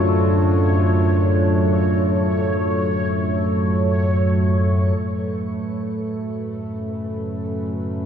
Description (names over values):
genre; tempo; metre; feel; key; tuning
dark ambient drone; free time; none; none; F# harmonic minor; A4 = 440 Hz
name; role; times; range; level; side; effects
dark analog pad; sustained chords; 0.0-8.1 s; F#3 to A4; -23 LUFS; right 1 dB; wide subtle chorus, shimmer reverb
tubular bells; arpeggios; 0.0-5.0 s; A4; -38 LUFS; left 2 dB; ping-pong delay, shimmer reverb
analog drone; drone; 0.0-8.1 s; F#2 to F#3; -20 LUFS; equal; chorus
bubbling stepped-filter texture; texture; 0.0-8.1 s; B4 to C#5; -28 LUFS; equal; chorus, built-in reverb, shimmer reverb
room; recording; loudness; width
wet cathedral reverb, RT60 5.1 s; none; -18 LUFS; side -8 dB against mid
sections
0.0-5.0 A section; 5.0-8.1 B section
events
none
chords
0.0 Dm; 5.0 F#m